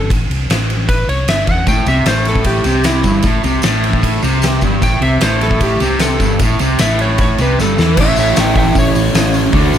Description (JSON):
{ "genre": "garage rock duo or trio", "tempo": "152 BPM", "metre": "4/4", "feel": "straight", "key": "unclear", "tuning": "A4 = 439 Hz", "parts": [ { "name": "electric slide guitar", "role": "melody", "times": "0.0-9.8 s", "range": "E4 to G5", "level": "-18 LUFS", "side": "equal", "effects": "none" }, { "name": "hollow-body short-scale fingered electric bass", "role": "bass", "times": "0.0-9.8 s", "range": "G1 to E2", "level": "-18 LUFS", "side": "equal", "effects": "none" }, { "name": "oversized low-tuned drum kit", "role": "drums", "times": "0.1-9.8 s", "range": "crash cymbal, hi-hat, kick drum, ride cymbal, snare drum", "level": "-16 LUFS", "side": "equal", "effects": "none" }, { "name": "raw garage guitar", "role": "riff", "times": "1.7-9.8 s", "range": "G2 to F#4", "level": "-15 LUFS", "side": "right 1 dB", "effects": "overdrive" }, { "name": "tambourine", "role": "percussion", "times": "1.7-9.8 s", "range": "none", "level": "-30 LUFS", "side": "left 6 dB", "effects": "none" } ], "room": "light reverb", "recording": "none", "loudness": "-11 LUFS", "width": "side -10 dB against mid", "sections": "0.0-8.0 A section; 8.0-9.8 B section", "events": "drum fill 7.6-8.0; electric slide guitar solo 8.0-9.8", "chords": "0.0 A5; 8.0 A", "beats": "| 0.10 0.49 0.88 1.28 | 1.67 2.06 2.46 2.85 | 3.25 3.64 4.04 4.43 | 4.83 5.22 5.62 6.01 | 6.40 6.80 7.19 7.58 | 7.97 8.37 8.76 9.15 | 9.54" }